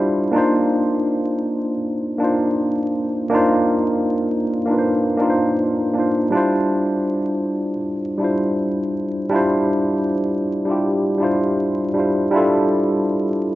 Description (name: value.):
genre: hip hop.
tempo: 80 BPM.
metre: 4/4.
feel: swing 58% on 16ths.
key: unclear.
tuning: A4 = 440 Hz.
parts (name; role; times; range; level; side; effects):
tine electric piano; solo; 0.0-13.6 s; G3 to C5; -17 LUFS; equal; medium stereo tremolo, cassette tape, low-pass filter.
room: moderate lush hall reverb, RT60 2.6 s.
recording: rough home demo mix, vinyl crackle, nothing above 7.5 kHz.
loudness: -17 LUFS.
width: side -16 dB against mid.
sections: 0.0-13.6 A section.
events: none.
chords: 0.3 Cm11; 6.3 Dm11.